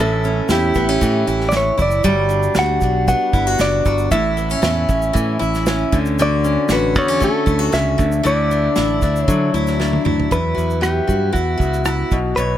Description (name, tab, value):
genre	acoustic pop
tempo	116 BPM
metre	4/4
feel	straight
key	D major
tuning	A4 = 439 Hz
part	direct-recorded clean electric guitar	melody	0.0-12.6 s	F#4 to F#5	-20 LUFS	right 1 dB	harmonic tremolo
part	picked steel-string acoustic guitar	accompaniment	0.0-12.6 s	E2 to C#5	-20 LUFS	left 2 dB	none
part	modern bright fingered electric bass	bass	0.0-12.6 s	F#1 to D3	-20 LUFS	equal	none
part	unplugged drum kit	drums	0.2-12.5 s	kick drum, rim click, shaker, snare drum, toms	-22 LUFS	right 1 dB	none
room	little or no reverb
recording	none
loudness	-15 LUFS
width	side -11 dB against mid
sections	0.0-10.3 A section; 10.3-12.6 B section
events	drum fill 9.8-10.3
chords	0.0 A7; 2.1 Gmaj7; 4.1 A; 5.9 Dmaj7; 8.0 Dadd9; 10.3 Emadd9